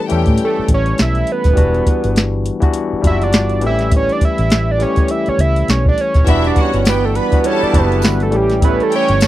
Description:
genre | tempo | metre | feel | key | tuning
lush 1970s-style soul | 102 BPM | 4/4 | swing 58% on 16ths | unclear | A4 = 440 Hz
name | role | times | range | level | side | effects
bright studio string section | second line | 0.0-0.6, 6.3-9.3 s | E4 to B5 | -24 LUFS | left 5 dB | none
barky tine electric piano | accompaniment | 0.0-9.3 s | E3 to A4 | -19 LUFS | left 4 dB | overdrive
vintage muted fingered electric bass | bass | 0.1-9.3 s | D#1 to A2 | -17 LUFS | equal | none
soft vintage rhythm box | drums | 0.1-9.3 s | hi-hat, kick drum, snare drum | -14 LUFS | equal | none
fat analog lead | melody | 0.4-9.3 s | G4 to E5 | -18 LUFS | right 3 dB | none
bright trombone section | stabs | 6.3-9.3 s | B2 to E4 | -21 LUFS | right 18 dB | none
tambourine | percussion | 6.9-9.3 s | none | -31 LUFS | left 18 dB | none
room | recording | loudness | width
little or no reverb | dry, close 1970s-style studio recording | -12 LUFS | side -14 dB against mid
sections
0.0-9.3 A section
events
analog synth lead solo 0.0-9.3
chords
0.0 A7; 1.6 Em9; 3.6 A7; 6.3 Em9; 8.3 A7

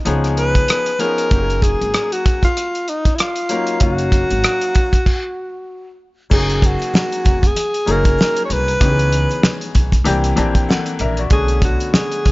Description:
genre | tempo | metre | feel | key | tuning
hip hop, jazz-hop | 96 BPM | 4/4 | swing 58% on 16ths | F# major | A4 = 440 Hz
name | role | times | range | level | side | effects
breathy alto saxophone | melody | 0.0-12.3 s | D#4 to C#5 | -20 LUFS | equal | none
clear upright piano | accompaniment | 0.1-12.3 s | D3 to A5 | -22 LUFS | left 3 dB | none
upright bass | bass | 0.1-12.3 s | E#1 to C#2 | -20 LUFS | equal | none
cloth-damped thuddy drum kit | drums | 0.1-12.3 s | crash cymbal, hi-hat, kick drum, rim click, snare drum | -16 LUFS | equal | none
egg shaker and congas | percussion | 6.3-12.3 s | none | -31 LUFS | right 2 dB | none
room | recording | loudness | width
studio ambience | nothing above 7.6 kHz | -14 LUFS | side -21 dB against mid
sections
0.0-6.3 A section; 6.3-12.3 B section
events
stop 5.1-6.3; upright piano fill 10.1-11.3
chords
0.1 C#7; 1.3 F#6; 6.3 F#69; 8.8 C#m9; 10.1 C9; 11.3 Bm9

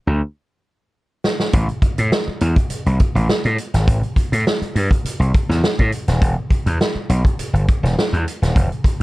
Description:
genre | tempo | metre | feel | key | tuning
funk | 103 BPM | 4/4 | straight | unclear | A4 = 439 Hz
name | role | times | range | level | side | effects
gritty slap bass | bass | 0.1-9.0 s | D#1 to A2 | -17 LUFS | equal | overdrive
vintage drum kit | drums | 1.2-9.0 s | hi-hat, kick drum, snare drum | -18 LUFS | equal | none
room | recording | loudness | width
little or no reverb | dark, warm production | -16 LUFS | side -20 dB against mid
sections
0.0-1.5 A section; 1.5-9.0 B section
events
break 0.4-1.5; drum fill 0.4-1.5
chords
none

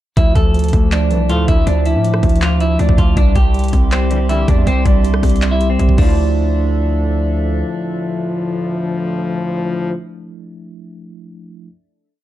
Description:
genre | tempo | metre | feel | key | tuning
hip hop, trap | 160 BPM | 4/4 | half-time | D minor | A4 = 438 Hz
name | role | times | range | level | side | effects
semi-hollow electric guitar | melody | 0.2-7.3 s | C4 to A4 | -21 LUFS | right 2 dB | tape echo
mellow tine electric piano | accompaniment | 0.2-11.7 s | F3 to G4 | -22 LUFS | equal | medium stereo tremolo
warbly tape-like pad | sustained chords | 0.2-9.9 s | F3 to D6 | -29 LUFS | equal | chorus, built-in reverb
hard-hitting 808-style bass | bass | 0.2-7.6 s | C2 to A2 | -16 LUFS | equal | none
trap drum kit | drums | 0.2-6.1 s | crash cymbal, handclaps, hi-hat, kick drum, rim click | -15 LUFS | equal | none
mellow brass ensemble | stabs | 1.1-1.6, 4.1-9.9 s | D2 to A3 | -22 LUFS | left 3 dB | none
room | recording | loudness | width
little or no reverb | dark, warm production | -13 LUFS | side -14 dB against mid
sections
0.2-6.2 hook; 6.2-9.2 final hit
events
drum fill 5.8-6.2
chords
0.2 Dmadd9; 3.2 Cadd9; 6.0 Dmadd9

